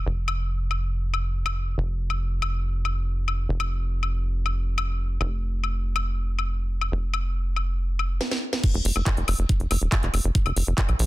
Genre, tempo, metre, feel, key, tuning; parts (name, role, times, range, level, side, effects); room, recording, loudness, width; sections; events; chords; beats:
psychedelic trance; 140 BPM; 4/4; straight; A4 = 441 Hz
tight sequencer bass; bass; 0.0-11.1 s; Eb1 to Bb1; -25 LUFS; equal
drum and bass drum kit; drums; 0.3-11.1 s; crash cymbal, handclaps, hi-hat, snare drum, woodblock; -29 LUFS; left 3 dB
electronic kick drum; drums; 8.6-10.9 s; -22 LUFS; equal
little or no reverb; dense, heavily limited modern master; -23 LUFS; side -17 dB against mid
0.0-8.6 A section; 8.6-11.1 B section
drum fill 8.2-8.6; drop 8.6-11.1
| 0.06 0.49 0.92 1.35 | 1.78 2.21 2.64 3.06 | 3.49 3.92 4.35 4.78 | 5.21 5.64 6.06 6.49 | 6.92 7.35 7.78 8.21 | 8.64 9.06 9.49 9.92 | 10.35 10.78